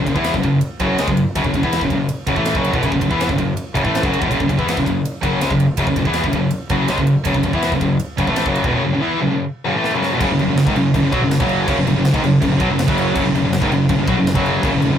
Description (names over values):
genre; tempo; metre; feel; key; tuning
heavy metal; 163 BPM; 4/4; straight; F# minor; A4 = 440 Hz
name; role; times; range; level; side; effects
heavy high-gain guitar; riff; 0.0-15.0 s; E2 to E4; -18 LUFS; left 4 dB; distortion
scooped high-gain guitar; riff; 0.0-15.0 s; E2 to E4; -20 LUFS; right 5 dB; distortion
fuzz fingered electric bass; bass; 0.0-15.0 s; E1 to E2; -24 LUFS; equal; overdrive
tight metal drum kit; drums; 0.1-14.9 s; crash cymbal, kick drum, ride cymbal, snare drum; -24 LUFS; right 1 dB; none
sludgy distorted guitar; riff; 10.2-15.0 s; F#2 to F#3; -26 LUFS; right 1 dB; none
room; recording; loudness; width
wet booth ambience, RT60 0.2 s; rough rehearsal-room recording; -15 LUFS; side -9 dB against mid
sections
0.0-10.2 A section; 10.2-15.0 B section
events
drum fill 9.8-10.2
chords
0.0 F#m; 10.2 F#5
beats
0.25 0.62 0.98 | 1.35 1.72 2.09 2.46 | 2.83 3.20 3.56 3.93 | 4.30 4.67 5.04 5.41 | 5.78 6.15 6.52 6.89 | 7.26 7.63 8.00 8.36 | 8.73 9.10 9.47 9.84 | 10.21 10.57 10.94 11.31 | 11.68 12.05 12.41 12.78 | 13.15 13.52 13.89 14.25 | 14.62